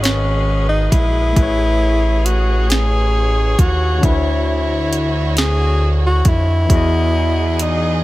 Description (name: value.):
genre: slow six-eight R&B.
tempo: 45 BPM (dotted quarters).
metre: 6/8.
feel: straight.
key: E major.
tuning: A4 = 438 Hz.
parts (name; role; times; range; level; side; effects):
breathy tenor saxophone; melody; 0.0-8.0 s; C#4 to G#4; -19 LUFS; equal; none.
barky tine electric piano; accompaniment; 0.0-8.0 s; D3 to F#5; -25 LUFS; left 6 dB; overdrive.
warm studio string section; sustained chords; 0.0-8.0 s; D3 to D#5; -26 LUFS; right 1 dB; none.
smooth synth bass; bass; 0.0-8.0 s; G#1 to F2; -17 LUFS; equal; none.
smooth R&B drum kit; drums; 0.0-7.8 s; hi-hat, kick drum, snare drum; -16 LUFS; equal; overdrive.
room: little or no reverb.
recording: none.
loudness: -13 LUFS.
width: side -17 dB against mid.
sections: 0.0-6.7 A section; 6.7-8.0 A section.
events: none.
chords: 0.0 G#m7; 1.4 Amaj7; 4.0 Dmaj9; 6.7 Emaj9.